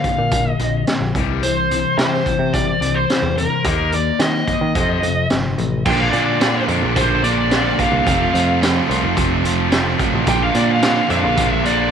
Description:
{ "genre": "classic rock", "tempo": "109 BPM", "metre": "4/4", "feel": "straight", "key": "unclear", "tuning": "A4 = 442 Hz", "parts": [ { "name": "dark smooth lead guitar", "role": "melody", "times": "0.0-11.9 s", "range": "Bb4 to G5", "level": "-21 LUFS", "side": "equal", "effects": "wah, overdrive, tape echo" }, { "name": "distorted electric guitar", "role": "riff", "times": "0.0-11.9 s", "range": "F2 to F4", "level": "-22 LUFS", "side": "left 11 dB", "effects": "distortion" }, { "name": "raw garage drum kit", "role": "drums", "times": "0.0-11.8 s", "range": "crash cymbal, hi-hat, kick drum, snare drum", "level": "-21 LUFS", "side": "right 1 dB", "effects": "none" }, { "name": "picked electric bass", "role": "bass", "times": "0.2-11.9 s", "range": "F1 to Eb3", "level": "-22 LUFS", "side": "right 1 dB", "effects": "none" }, { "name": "crunchy overdriven guitar", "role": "riff", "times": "5.9-11.9 s", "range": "F2 to F4", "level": "-20 LUFS", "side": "right 13 dB", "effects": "none" } ], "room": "light reverb", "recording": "1960s-style stereo with parts hard left and right", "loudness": "-15 LUFS", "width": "side -7 dB against mid", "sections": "0.0-5.9 A section; 5.9-11.9 B section", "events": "none", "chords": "0.0 Bb; 1.2 C; 3.6 Eb5; 4.8 F7; 5.9 Bb; 8.1 F; 10.3 Bb" }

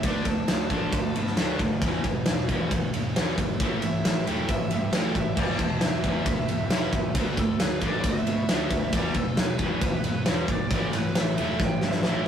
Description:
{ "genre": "hard rock", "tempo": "135 BPM", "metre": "4/4", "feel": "straight", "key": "unclear", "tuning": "A4 = 441 Hz", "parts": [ { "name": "nasal lead guitar with a parked wah", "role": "melody", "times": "0.0-12.3 s", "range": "A4 to A5", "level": "-34 LUFS", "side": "right 1 dB", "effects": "overdrive" }, { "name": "distorted electric guitar", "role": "riff", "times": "0.0-12.3 s", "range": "E2 to D4", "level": "-30 LUFS", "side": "left 2 dB", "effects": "distortion" }, { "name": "sludgy distorted guitar", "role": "riff", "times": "0.0-12.3 s", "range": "E2 to D4", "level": "-34 LUFS", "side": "right 3 dB", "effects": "none" }, { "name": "fuzz picked electric bass", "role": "bass", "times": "0.0-12.2 s", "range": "E1 to B2", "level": "-34 LUFS", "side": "left 1 dB", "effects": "overdrive" }, { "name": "big rock drum kit", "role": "drums", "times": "0.0-12.1 s", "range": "crash cymbal, kick drum, ride cymbal, snare drum", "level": "-25 LUFS", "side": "equal", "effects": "none" } ], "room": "moderate studio reverb, RT60 0.5 s", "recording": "rough rehearsal-room recording, warm saturation", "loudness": "-23 LUFS", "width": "side -8 dB against mid", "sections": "0.0-12.3 A section", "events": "lead electric guitar solo 0.0-12.3; drum fill 11.6-12.3", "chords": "0.0 D5; 1.8 E5; 3.6 A5; 5.4 E5; 7.2 D5; 8.9 E5; 10.7 A5" }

